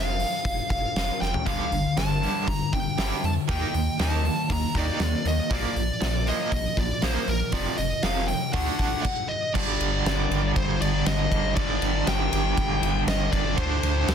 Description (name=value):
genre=hard rock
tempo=119 BPM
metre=4/4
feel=straight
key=G minor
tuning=A4 = 440 Hz
part: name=smooth overdriven lead guitar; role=melody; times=0.0-14.1 s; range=Bb4 to Bb5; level=-29 LUFS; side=equal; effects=none
part: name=warm sub bass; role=bass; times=0.0-14.1 s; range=F1 to F2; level=-28 LUFS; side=equal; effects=none
part: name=huge arena drum kit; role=drums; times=0.2-14.1 s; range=crash cymbal, hi-hat, kick drum, ride cymbal, snare drum, toms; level=-28 LUFS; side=equal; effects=none
part: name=cranked stack guitar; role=riff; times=1.5-14.1 s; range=F2 to Eb4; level=-30 LUFS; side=right 11 dB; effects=overdrive, tremolo
part: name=distorted electric guitar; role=riff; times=1.5-14.1 s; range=F2 to Eb4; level=-31 LUFS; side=left 11 dB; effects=distortion
room=light reverb, studio ambience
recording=dense, heavily limited modern master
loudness=-22 LUFS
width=side -8 dB against mid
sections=0.0-9.5 A section; 9.5-14.1 B section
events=drum fill 1.2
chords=0.0 N.C.; 1.5 G5; 3.5 Eb; 5.5 Bb; 7.5 F5; 8.5 D; 9.5 G5; 13.6 D5